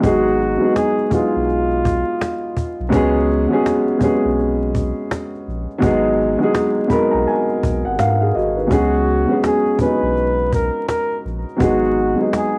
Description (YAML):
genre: lo-fi hip hop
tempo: 83 BPM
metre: 4/4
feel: swing 61% on 16ths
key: unclear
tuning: A4 = 440 Hz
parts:
  - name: dark upright piano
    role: accompaniment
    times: 0.0-12.6 s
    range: F#3 to B5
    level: -20 LUFS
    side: equal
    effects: cassette tape, low-pass filter
  - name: saturated sub bass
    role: bass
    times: 0.0-12.1 s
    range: G#1 to G#2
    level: -25 LUFS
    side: equal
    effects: none
  - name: cajon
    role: drums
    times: 0.0-12.6 s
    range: none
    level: -26 LUFS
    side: equal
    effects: cassette tape
  - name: breathy flugelhorn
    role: melody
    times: 0.1-2.9, 8.7-12.6 s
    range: E#4 to B4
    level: -23 LUFS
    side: equal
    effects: low-pass filter, cassette tape
room: moderate studio reverb, RT60 0.7 s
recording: home recording on cassette, vinyl crackle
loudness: -18 LUFS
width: mono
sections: 0.0-8.7 A section; 8.7-12.6 A section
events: none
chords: 0.0 G#m7; 2.9 C#7sus4; 5.8 G#m7; 8.7 C#7sus4; 11.6 G#m7